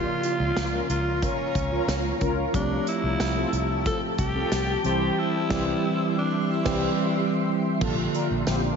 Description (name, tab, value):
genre	1980s-style pop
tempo	91 BPM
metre	4/4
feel	straight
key	unclear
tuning	A4 = 441 Hz
part	raspy alto saxophone	melody	0.0-7.5 s	Db4 to A4	-29 LUFS	equal	diffuse ambient delay
part	bright tine electric piano	accompaniment	0.0-8.8 s	C3 to G4	-27 LUFS	right 1 dB	medium stereo tremolo
part	granular cloud pad	sustained chords	0.0-8.8 s	F3 to C6	-32 LUFS	left 1 dB	built-in reverb, analog chorus
part	vintage muted fingered electric bass	bass	0.0-8.7 s	Bb1 to Db2	-29 LUFS	equal	none
part	modern studio drum kit	drums	0.2-8.6 s	crash cymbal, hi-hat, kick drum, snare drum, tambourine	-31 LUFS	equal	none
part	mellow synth brass	stabs	0.7-8.8 s	Bb3 to C5	-33 LUFS	left 1 dB	chorus, diffuse ambient delay
room	moderate lush hall reverb, RT60 2.4 s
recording	dreamy mix soaked in reverb, nothing above 7.6 kHz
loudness	-22 LUFS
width	side -6 dB against mid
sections	0.0-7.8 A section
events	band accent 5.2-7.8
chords	0.0 Bbm/Db; 2.5 Fadd9/C; 4.8 C; 7.8 Bb